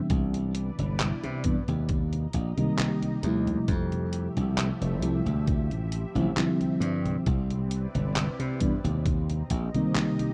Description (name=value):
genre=vaporwave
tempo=67 BPM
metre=4/4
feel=swing 54% on 16ths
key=unclear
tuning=A4 = 440 Hz
part: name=mellow FM electric piano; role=accompaniment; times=0.0-10.3 s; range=C3 to E4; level=-31 LUFS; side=equal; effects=subtle chorus, vintage 12-bit sampler grit, tape echo
part: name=lush unison pad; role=sustained chords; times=0.0-10.3 s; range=F3 to Bb5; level=-42 LUFS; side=equal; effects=chorus, phaser
part: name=slap bass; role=bass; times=0.1-9.7 s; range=F1 to C3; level=-31 LUFS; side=equal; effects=tube saturation
part: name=detuned 8-bit digital drum machine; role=drums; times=0.1-10.3 s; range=congas, handclaps, hi-hat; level=-36 LUFS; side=equal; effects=none
part: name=electronic kick drum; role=drums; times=0.1-9.7 s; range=none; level=-32 LUFS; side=equal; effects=none
room=little or no reverb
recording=rough home demo mix, cassette tape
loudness=-28 LUFS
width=mono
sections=0.0-10.3 A section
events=none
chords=0.1 Cmaj9; 1.9 Eb6; 3.7 Fmaj9; 5.5 Dm11; 7.3 Cmaj9; 9.1 Eb6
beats=| 0.10 1.00 1.89 2.79 | 3.68 4.58 5.47 6.37 | 7.26 8.16 9.06 9.95